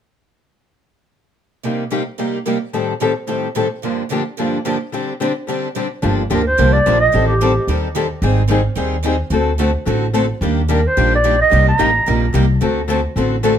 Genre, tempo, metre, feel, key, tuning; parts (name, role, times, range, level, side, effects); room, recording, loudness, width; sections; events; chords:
acoustic string swing (jazz manouche); 219 BPM; 4/4; swing 58% on 8ths; G minor; A4 = 439 Hz
picked old ladder-braced acoustic guitar; accompaniment; 1.6-13.5 s; G2 to A4; -20 LUFS; left 6 dB
picked steel-string acoustic guitar; accompaniment; 1.6-13.5 s; G2 to A4; -23 LUFS; right 9 dB
upright bass; bass; 6.0-13.6 s; G1 to Eb2; -17 LUFS; equal
breathy clarinet; melody; 6.3-7.8, 10.7-12.2 s; G4 to Bb5; -16 LUFS; right 2 dB; tape echo
light reverb; -14 LUFS; side -9 dB against mid
1.6-6.0 A section; 6.0-13.6 B section
1.6 Cm7; 2.7 Am7b5; 3.8 Gm7; 4.9 D7sus4; 6.0 Gm7; 7.1 Am7b5; 8.2 Abmaj7; 9.3 D7; 10.4 Ebmaj7; 11.5 Cm7; 12.6 D7